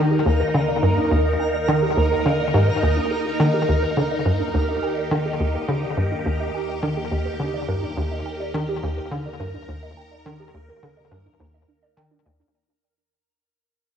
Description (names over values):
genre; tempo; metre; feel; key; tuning
ambient, sequencer-driven space music; 105 BPM; 4/4; straight; Eb major; A4 = 438 Hz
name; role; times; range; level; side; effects
phased string machine; sustained chords; 0.0-12.6 s; Eb3 to Bb4; -26 LUFS; equal; ensemble chorus, phaser, cassette tape, plate reverb
warbly dusty pluck; arpeggios; 0.0-12.5 s; D4 to G5; -30 LUFS; right 6 dB; chorus, auto-pan, cassette tape, ping-pong delay, plate reverb
tight sequencer bass; riff; 0.0-12.4 s; Eb2 to Eb3; -22 LUFS; left 1 dB; ensemble chorus, cassette tape, ping-pong delay
analog drone; bass; 0.0-12.5 s; Eb2; -37 LUFS; equal; chorus
twinkling granular texture; texture; 0.0-12.6 s; Bb4; -29 LUFS; right 2 dB; built-in reverb, cassette tape, plate reverb
room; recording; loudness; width
wet studio reverb, RT60 0.6 s; home recording on cassette; -20 LUFS; side -8 dB against mid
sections
0.0-12.5 A section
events
filter sweep on synth arpeggio sound 0.0-12.5; fade-out 3.4-12.5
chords
0.0 Ebmaj7